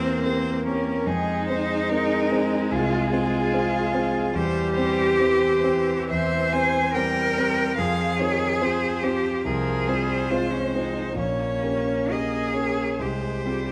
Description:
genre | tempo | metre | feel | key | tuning
classical, slow romantic movement for piano quartet | 71 BPM | 4/4 | uneven beats, rubato | F minor | A4 = 440 Hz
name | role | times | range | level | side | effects
rich violin | melody | 0.0-13.7 s | Ab4 to Ab5 | -32 LUFS | equal | none
rich cello | second line | 0.0-13.7 s | C4 to C5 | -27 LUFS | equal | none
rich viola | accompaniment | 0.0-13.7 s | Eb3 to Bb3 | -33 LUFS | equal | none
warm grand piano | accompaniment | 0.0-13.7 s | Bb1 to C5 | -28 LUFS | equal | none
room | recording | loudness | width
moderate recital hall reverb, RT60 1.7 s | close, detailed microphones, vinyl crackle | -23 LUFS | mono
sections
0.0-13.7 A section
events
none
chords
0.0 C7/E; 1.1 Fm; 4.4 C/E; 7.8 Fm; 11.2 Gdim/Bb; 13.0 Fm/C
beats
0.24 | 1.07 1.89 2.71 3.53 | 4.36 5.20 6.10 6.94 | 7.77 8.61 9.45 10.30 | 11.16 12.10 12.99

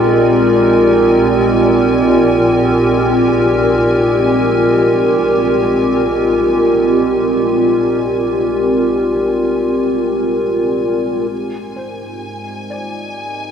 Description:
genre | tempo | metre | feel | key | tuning
ambient | free time | none | none | unclear | A4 = 438 Hz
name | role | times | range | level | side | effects
warbly tape-like pad | sustained chords | 0.0-13.5 s | Ab2 to D5 | -12 LUFS | equal | chorus, built-in reverb
felt-muted upright piano | arpeggios | 0.0-13.5 s | Ab4 to D5 | -32 LUFS | equal | none
warm studio double bass section | bass | 0.0-11.3 s | Bb1 | -25 LUFS | equal | none
analog drone | drone | 0.0-13.5 s | Ab3 to Eb4 | -26 LUFS | equal | chorus
clear chamber violin section | texture | 0.0-13.5 s | Ab5 | -27 LUFS | equal | none
room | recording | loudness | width
wet cathedral reverb, RT60 5.3 s | dreamy mix soaked in reverb, cassette tape | -11 LUFS | side -8 dB against mid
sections
0.0-11.3 A section; 11.3-13.5 B section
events
fade-out on double bass section 0.0-11.3; fade-out on synth drone 0.0-11.3; fade-out on violin section 0.0-11.3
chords
0.0 Bb7; 11.3 Abmaj7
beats
free time

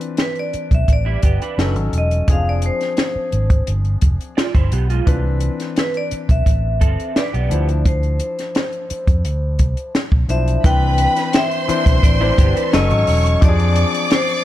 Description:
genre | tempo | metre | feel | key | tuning
lush 1970s-style soul | 86 BPM | 4/4 | straight | C major | A4 = 438 Hz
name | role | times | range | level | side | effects
warm concert grand piano | accompaniment | 0.0-14.4 s | E3 to C5 | -25 LUFS | left 5 dB | none
compact cocktail drum kit | drums | 0.0-14.4 s | hi-hat, kick drum, snare drum | -16 LUFS | equal | none
vibraphone with medium hard mallets | melody | 0.2-14.4 s | B4 to G5 | -23 LUFS | left 1 dB | none
fingered electric bass | bass | 0.5-13.8 s | E1 to F2 | -18 LUFS | equal | none
electric guitar through a small old amp | riff | 1.1-7.7, 12.2-12.9 s | G3 to D5 | -26 LUFS | right 8 dB | ensemble chorus
rich studio violin section | second line | 10.6-14.4 s | B4 to D6 | -22 LUFS | right 1 dB | none
celesta | texture | 11.0-12.3 s | none | barely audible | none | none
room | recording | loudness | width
small room ambience | none | -15 LUFS | side -14 dB against mid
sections
0.0-10.6 A section; 10.6-14.4 B section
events
none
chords
0.0 Cmaj9; 1.6 F#m6; 2.3 Fm6; 5.1 Cmaj9; 7.5 Dm9; 10.6 Cmaj9; 12.7 F#m6; 13.4 Fm6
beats
0.19 0.88 1.58 | 2.28 2.98 3.67 4.37 | 5.07 5.77 6.46 7.16 | 7.86 8.55 9.25 9.95 | 10.64 11.34 12.03 12.73 | 13.42 14.11

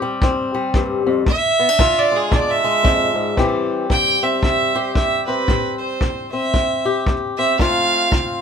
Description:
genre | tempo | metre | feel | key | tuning
acoustic country blues, solo or duo | 114 BPM | 4/4 | swing 60% on 8ths | A minor | A4 = 440 Hz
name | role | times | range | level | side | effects
fingerpicked swing-style acoustic guitar | accompaniment | 0.0-8.4 s | E2 to G4 | -20 LUFS | left 4 dB | none
kick drum | drums | 0.2-8.3 s | none | -20 LUFS | equal | none
rich fiddle | melody | 1.3-8.4 s | G#4 to G5 | -18 LUFS | right 3 dB | none
room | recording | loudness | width
light reverb | minimal, uncompressed stereo recording | -15 LUFS | side -7 dB against mid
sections
0.0-3.4 A section; 3.4-8.4 B section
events
fiddle solo 0.0-3.4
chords
0.0 Am7 (rootless); 1.3 E7b9; 3.4 Am7; 7.6 Dm7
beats
0.22 0.75 | 1.27 1.80 2.32 2.85 | 3.37 3.90 4.43 4.95 | 5.48 6.01 6.54 7.06 | 7.59 8.12

